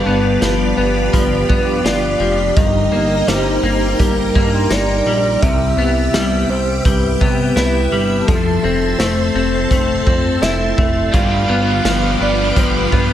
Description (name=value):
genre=dream pop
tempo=84 BPM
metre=4/4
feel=straight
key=F lydian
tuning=A4 = 440 Hz
part: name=soft octave-layered synth lead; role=melody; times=0.0-13.1 s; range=A4 to F5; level=-20 LUFS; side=right 3 dB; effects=chorus, tremolo, digital delay
part: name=string machine, violins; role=sustained chords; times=0.0-13.1 s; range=Eb4 to D6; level=-22 LUFS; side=equal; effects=ensemble chorus
part: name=electric guitar at the edge of break-up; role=arpeggios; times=0.0-13.1 s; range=G2 to F4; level=-18 LUFS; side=left 4 dB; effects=analog chorus, digital delay
part: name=chorused synth bass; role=bass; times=0.0-13.1 s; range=F1 to C3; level=-21 LUFS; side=equal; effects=none
part: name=vibraphone with soft mallets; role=texture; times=0.0-11.5 s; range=D5 to D6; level=-32 LUFS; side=equal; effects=digital delay
part: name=raw garage drum kit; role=drums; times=0.4-13.1 s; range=hi-hat, kick drum, snare drum, tambourine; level=-18 LUFS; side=equal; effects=none
part: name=biting overdriven guitar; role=accompaniment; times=11.1-13.1 s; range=G3 to B4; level=-22 LUFS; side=right 2 dB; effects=harmonic tremolo, lush chorus
room=moderate lush hall reverb, RT60 2.9 s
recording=none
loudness=-13 LUFS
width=side -11 dB against mid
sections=0.0-13.1 A section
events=none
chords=0.0 G7; 2.6 Eb/G; 5.4 Cmaj7; 8.3 Fmaj7; 11.1 G7